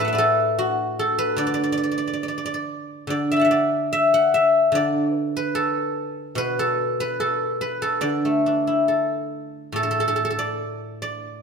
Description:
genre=chinese traditional, Chinese solo plucked strings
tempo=72 BPM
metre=2/4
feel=rubato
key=D gong mode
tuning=A4 = 440 Hz
part: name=guzheng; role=solo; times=0.0-11.4 s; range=A2 to D6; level=-20 LUFS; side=equal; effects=none
room=wet scoring stage reverb, RT60 1.5 s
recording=minimal, uncompressed stereo recording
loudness=-20 LUFS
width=side -5 dB against mid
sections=0.0-9.7 A section; 9.7-11.4 B section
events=none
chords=none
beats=0.57 | 1.39 2.23 | 3.08 3.92 | 4.75 5.57 | 6.38 7.20 | 8.04 8.89 | 9.75 10.60

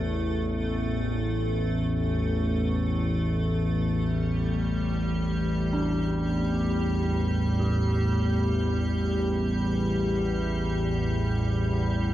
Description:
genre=dark ambient drone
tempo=free time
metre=none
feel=none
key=unclear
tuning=A4 = 440 Hz
part: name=dark detuned synth bell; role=arpeggios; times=0.0-12.1 s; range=D4 to A4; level=-39 LUFS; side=right 1 dB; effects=none
part: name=analog drone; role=drone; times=0.0-12.1 s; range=A1 to E2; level=-25 LUFS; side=equal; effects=chorus
part: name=icy glass pad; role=texture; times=0.0-12.1 s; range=G3 to A4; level=-30 LUFS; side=equal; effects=chorus, built-in reverb
room=wet cathedral reverb, RT60 4.9 s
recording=worn, warbling old tape, cassette tape, warbly pitch drift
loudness=-24 LUFS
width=side -13 dB against mid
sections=0.0-12.1 A section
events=none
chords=0.0 Gsus2/A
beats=free time

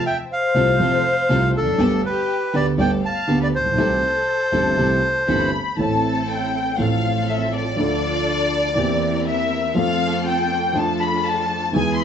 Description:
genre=tango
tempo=121 BPM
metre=4/4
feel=rubato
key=C major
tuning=A4 = 439 Hz
part: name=bandoneon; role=melody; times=0.0-5.5 s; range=A4 to A5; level=-20 LUFS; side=equal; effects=none
part: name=warm studio violin section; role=second line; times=0.0-12.0 s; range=D4 to C6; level=-23 LUFS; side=left 3 dB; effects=none
part: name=dark grand piano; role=accompaniment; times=0.5-12.0 s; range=G1 to A4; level=-21 LUFS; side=right 1 dB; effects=none
part: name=rich chamber string section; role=stabs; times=0.6-12.0 s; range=A2 to Bb4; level=-27 LUFS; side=left 1 dB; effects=none
room=wet studio reverb, RT60 0.8 s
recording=heard from further back in the room, nothing above 8.0 kHz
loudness=-17 LUFS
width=side -8 dB against mid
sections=0.0-5.8 A section; 5.8-12.0 B section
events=violin section solo 5.8-12.0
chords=0.0 F; 1.8 Gadd9; 3.8 C6; 5.8 Am; 6.8 F/A; 7.8 Dm; 8.8 C7/E; 9.8 F; 10.8 Dm/F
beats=0.30 0.80 1.30 | 1.79 2.29 2.79 3.28 | 3.78 4.28 4.78 5.28 | 5.79 6.29 6.78 7.28 | 7.78 8.27 8.77 9.26 | 9.76 10.26 10.75 11.25 | 11.74

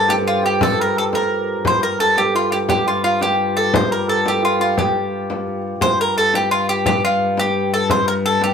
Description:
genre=medieval dance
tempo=115 BPM (dotted quarters)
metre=6/8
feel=straight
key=G minor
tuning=A4 = 440 Hz
part: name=mandolin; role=melody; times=0.0-8.5 s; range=F4 to C5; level=-18 LUFS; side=equal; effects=none
part: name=hammered dulcimer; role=second line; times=0.0-8.0 s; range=F4 to C5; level=-23 LUFS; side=right 3 dB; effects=none
part: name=warm viola da gamba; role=drone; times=0.0-8.5 s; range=G2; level=-23 LUFS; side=left 3 dB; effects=none
part: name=frame drum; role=percussion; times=0.1-8.5 s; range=none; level=-22 LUFS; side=left 2 dB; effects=none
room=wet studio reverb, RT60 0.6 s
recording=band playing live in one room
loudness=-15 LUFS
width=side -7 dB against mid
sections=0.0-5.8 A section; 5.8-8.5 A section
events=none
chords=none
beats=0.09 | 0.61 1.13 | 1.65 2.17 | 2.69 3.21 | 3.73 4.25 | 4.77 5.29 | 5.82 6.33 | 6.86 7.38 | 7.90 8.42

